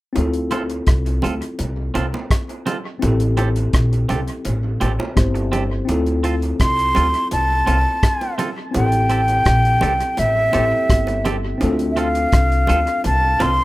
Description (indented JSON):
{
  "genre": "lovers rock reggae",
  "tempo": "84 BPM",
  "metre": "4/4",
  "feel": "straight",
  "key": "D minor",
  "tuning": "A4 = 438 Hz",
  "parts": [
    { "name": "tine electric piano", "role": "accompaniment", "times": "0.1-13.6 s", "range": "C4 to C5", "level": "-25 LUFS", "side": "left 2 dB", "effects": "overdrive, fast stereo tremolo" },
    { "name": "upright bass", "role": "bass", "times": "0.2-13.6 s", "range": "G1 to D2", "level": "-20 LUFS", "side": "equal", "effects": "none" },
    { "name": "damped 70s drum kit", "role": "drums", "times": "0.2-13.6 s", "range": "hi-hat, kick drum, rim click", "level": "-20 LUFS", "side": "equal", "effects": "none" },
    { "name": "bongos", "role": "percussion", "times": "0.2-13.6 s", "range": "none", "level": "-29 LUFS", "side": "right 2 dB", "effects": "dub echo" },
    { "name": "twangy electric guitar", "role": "stabs", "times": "0.5-13.5 s", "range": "C4 to A4", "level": "-25 LUFS", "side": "right 4 dB", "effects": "none" },
    { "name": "breathy concert flute", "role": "melody", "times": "6.6-13.6 s", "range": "E5 to C6", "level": "-18 LUFS", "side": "equal", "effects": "dub echo" }
  ],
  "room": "light reverb",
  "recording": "rough home demo mix",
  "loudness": "-16 LUFS",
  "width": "side -18 dB against mid",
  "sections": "0.2-5.9 A section; 5.9-13.6 B section",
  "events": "none",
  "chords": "0.2 Dm7; 3.0 Am7; 5.9 Dm7; 8.7 Am7; 11.6 Dm7"
}